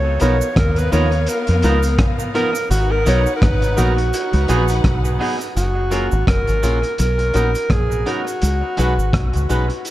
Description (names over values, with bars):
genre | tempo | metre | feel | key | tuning
lovers rock reggae | 84 BPM | 4/4 | swing 57% on 16ths | unclear | A4 = 440 Hz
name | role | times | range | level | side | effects
breathy alto saxophone | melody | 0.0-9.9 s | F#4 to C#5 | -22 LUFS | equal | dub echo
warm studio string section | second line | 0.0-5.5 s | B3 to F#5 | -27 LUFS | left 1 dB | dub echo
deep dub fingered electric bass | bass | 0.0-9.7 s | F#1 to E#2 | -18 LUFS | equal | none
clear concert grand piano | accompaniment | 0.2-9.6 s | A#3 to B4 | -26 LUFS | left 1 dB | dub echo
twangy electric guitar | stabs | 0.2-9.7 s | E#3 to B4 | -26 LUFS | right 3 dB | dub echo
crunchy breakbeat drum kit | drums | 0.2-9.9 s | hi-hat, kick drum, rim click | -21 LUFS | equal | none
cabasa | percussion | 0.2-9.9 s | none | -35 LUFS | right 8 dB | none
room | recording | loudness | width
light reverb | dark, warm production | -15 LUFS | side -15 dB against mid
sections
0.0-5.6 A section; 5.6-9.9 B section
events
none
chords
0.0 C#13; 2.7 G#m9; 4.1 C#9sus4 (rootless); 5.6 F#maj7; 7.0 Bmaj7; 8.4 C#7sus4